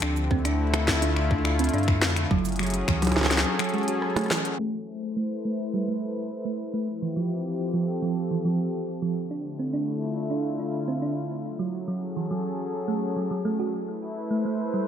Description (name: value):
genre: IDM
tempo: 105 BPM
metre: 4/4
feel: straight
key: A minor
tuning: A4 = 437 Hz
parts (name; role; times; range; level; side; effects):
- warm analog pad; sustained chords; 0.0-14.9 s; D3 to C5; -29 LUFS; left 2 dB; chorus
- thumb-piano-like synth pluck; arpeggios; 0.0-14.8 s; E3 to F#4; -29 LUFS; right 3 dB; chorus, ping-pong delay
- warm sub bass; bass; 0.0-3.5 s; F#1 to G2; -27 LUFS; left 1 dB; none
- glitchy drum kit; drums; 0.0-4.6 s; finger snaps, hi-hat, percussion blips, rim click, shaker, snare drum; -27 LUFS; equal; gated reverb, ping-pong delay
- electronic kick drum; drums; 0.3-3.0 s; none; -26 LUFS; left 1 dB; none
room: moderate plate reverb, RT60 1.3 s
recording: bright 1980s-style digital production, low-pass filter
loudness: -24 LUFS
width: side -9 dB against mid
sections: 0.0-4.6 A section; 4.6-14.9 B section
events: break 3.5-4.6; drum fill 4.0-4.6; band accent 4.5; filter sweep on synth arpeggio sound 4.6-14.9; filter sweep 4.6-14.9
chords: 0.0 Dm7; 2.3 F#m7; 4.6 Am; 6.9 Fmaj7; 9.2 Dm7; 11.4 F#m7; 13.7 Am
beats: | 0.02 0.59 1.16 1.74 | 2.31 2.88 3.45 4.02 | 4.59 5.16 5.74 6.31 | 6.88 7.45 8.02 8.59 | 9.16 9.74 10.31 10.88 | 11.45 12.02 12.59 13.16 | 13.74 14.31